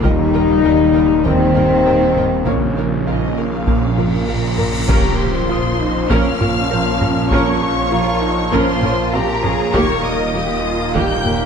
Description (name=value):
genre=cinematic, hybrid orchestral and electronic film score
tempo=99 BPM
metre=4/4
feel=straight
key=Bb dorian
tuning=A4 = 439 Hz
part: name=rich chamber violin section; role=melody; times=0.0-11.5 s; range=F5 to G6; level=-25 LUFS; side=left 4 dB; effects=none
part: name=rich symphonic violin section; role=second line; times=0.0-11.5 s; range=Bb4 to Bb5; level=-26 LUFS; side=left 4 dB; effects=none
part: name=rich symphonic viola section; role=accompaniment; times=0.0-11.3 s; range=C3 to C5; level=-24 LUFS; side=right 1 dB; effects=none
part: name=granular cloud pad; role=sustained chords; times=0.0-11.5 s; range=Bb3 to G5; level=-26 LUFS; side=left 1 dB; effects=built-in reverb
part: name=mellow French horn section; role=sustained chords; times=0.0-11.5 s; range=Bb3 to F4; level=-20 LUFS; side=left 6 dB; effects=none
part: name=tight sequenced synth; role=arpeggios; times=0.0-11.4 s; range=Eb3 to Bb4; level=-26 LUFS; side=right 2 dB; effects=chorus
part: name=rich symphonic cello section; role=bass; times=0.0-11.5 s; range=Db3 to Bb4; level=-24 LUFS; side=right 3 dB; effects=none
part: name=rich symphonic double bass section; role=bass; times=0.0-11.3 s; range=Bb1 to Eb2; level=-23 LUFS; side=right 4 dB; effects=none
part: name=snarling distorted saw bass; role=bass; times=0.0-11.5 s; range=Eb1 to Bb1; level=-25 LUFS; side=equal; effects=distortion
part: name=taiko ensemble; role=drums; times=0.0-11.5 s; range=none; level=-22 LUFS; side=equal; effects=none
part: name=clear baby grand piano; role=texture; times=0.0-11.5 s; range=F4 to F6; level=-32 LUFS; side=left 1 dB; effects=none
part: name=warm trombone section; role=sustained chords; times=0.1-11.5 s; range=Bb2 to Db4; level=-25 LUFS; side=right 3 dB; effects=none
part: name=cymbal swell and impact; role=sound effects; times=4.1-7.3 s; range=none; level=-24 LUFS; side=equal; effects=none
room=wet scoring stage reverb, RT60 1.6 s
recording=dark, warm production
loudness=-14 LUFS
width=side -6 dB against mid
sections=0.0-4.9 A section; 4.9-11.5 B section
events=cymbal swell 4.1-4.9; impact 4.9-7.3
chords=0.0 Eb; 2.5 Bbm; 4.9 Bbmadd9; 9.7 Eb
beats=| 0.04 0.65 1.25 1.86 | 2.47 3.07 3.68 4.29 | 4.89 5.50 6.10 6.71 | 7.32 7.92 8.53 9.13 | 9.74 10.35 10.95